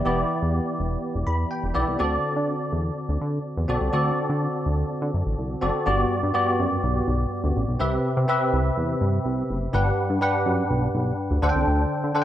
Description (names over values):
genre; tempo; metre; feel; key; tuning
1980s-style pop; 124 BPM; 4/4; straight; unclear; A4 = 437 Hz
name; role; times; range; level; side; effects
bell-like tine electric piano; accompaniment; 0.0-12.2 s; G2 to B5; -23 LUFS; equal; ensemble chorus
chorused synth bass; bass; 0.0-12.1 s; E1 to D3; -24 LUFS; equal; none
room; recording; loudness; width
light reverb; none; -21 LUFS; side -12 dB against mid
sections
0.0-5.9 A section; 5.9-12.2 B section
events
tine electric piano fill 1.0-2.0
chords
0.0 Em7; 2.0 D7; 5.9 Gmaj7; 7.8 Cmaj7; 9.7 Gmaj7; 11.4 D7sus4